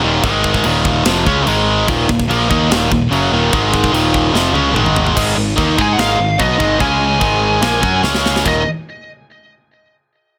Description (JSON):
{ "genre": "heavy metal", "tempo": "146 BPM", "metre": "4/4", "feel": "straight", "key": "Eb minor", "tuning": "A4 = 442 Hz", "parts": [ { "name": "distorted electric guitar", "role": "riff", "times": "0.0-8.6 s", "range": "Eb2 to Ab4", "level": "-18 LUFS", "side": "equal", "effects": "overdrive" }, { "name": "heavy high-gain guitar", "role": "riff", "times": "0.0-8.6 s", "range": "Eb2 to Ab4", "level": "-22 LUFS", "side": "equal", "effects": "distortion" }, { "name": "picked electric bass", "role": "bass", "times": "0.0-8.6 s", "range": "Eb1 to Ab2", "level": "-23 LUFS", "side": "equal", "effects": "none" }, { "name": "tight metal drum kit", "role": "drums", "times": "0.2-8.6 s", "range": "china cymbal, crash cymbal, kick drum, snare drum, toms", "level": "-22 LUFS", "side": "equal", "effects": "none" }, { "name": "high-gain lead guitar", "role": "melody", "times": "5.8-8.7 s", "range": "Eb5 to Ab5", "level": "-20 LUFS", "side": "equal", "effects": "distortion, digital delay" } ], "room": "light reverb", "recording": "none", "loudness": "-14 LUFS", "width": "mono", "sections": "0.0-5.2 A section; 5.2-8.5 B section; 8.5-10.1 C section", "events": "drum fill 4.3-5.2, 8.0-8.5", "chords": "0.2 Ab5; 0.6 Eb5; 1.5 Ab5; 1.9 Ebm; 3.5 Ab5; 3.9 Eb5; 4.7 Ab5; 6.8 Db5; 7.2 Ab5; 8.0 Db5; 8.5 Eb5" }